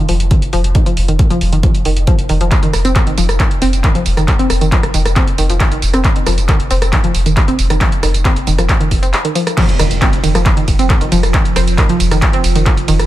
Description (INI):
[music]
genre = driving peak-time techno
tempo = 136 BPM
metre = 4/4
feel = straight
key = unclear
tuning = A4 = 440 Hz
[part]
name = analog pluck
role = riff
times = 0.1-12.9 s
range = Eb3 to C4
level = -18 LUFS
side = right 1 dB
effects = chorus, tube saturation, sidechain pumping, tape echo
[part]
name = warm sub bass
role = bass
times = 0.1-13.1 s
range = F1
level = -16 LUFS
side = equal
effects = overdrive, sidechain pumping, low-pass filter
[part]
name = punchy analog drum machine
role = drums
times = 0.1-13.1 s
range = crash cymbal, handclaps, hi-hat, ride cymbal, rim click, tambourine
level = -18 LUFS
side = equal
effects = none
[part]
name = electronic kick drum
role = drums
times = 0.3-12.8 s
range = none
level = -14 LUFS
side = equal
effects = none
[part]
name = deep dark ambient pad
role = drone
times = 10.7-13.1 s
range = F3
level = -22 LUFS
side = right 3 dB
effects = chorus, built-in reverb, sidechain pumping
[part]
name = impact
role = sound effects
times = 9.6-11.3 s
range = none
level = -23 LUFS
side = equal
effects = none
[sound]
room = digital ambience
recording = none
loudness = -11 LUFS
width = side -14 dB against mid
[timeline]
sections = 0.0-9.6 A section; 9.6-13.1 B section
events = drop 9.6-13.1; impact 9.6-11.3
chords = 0.0 F5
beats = 0.31 | 0.75 1.19 1.63 2.07 | 2.52 2.96 3.40 3.84 | 4.28 4.72 5.16 5.60 | 6.04 6.49 6.93 7.37 | 7.81 8.25 8.69 9.13 | 9.57 10.02 10.46 10.90 | 11.34 11.78 12.22 12.66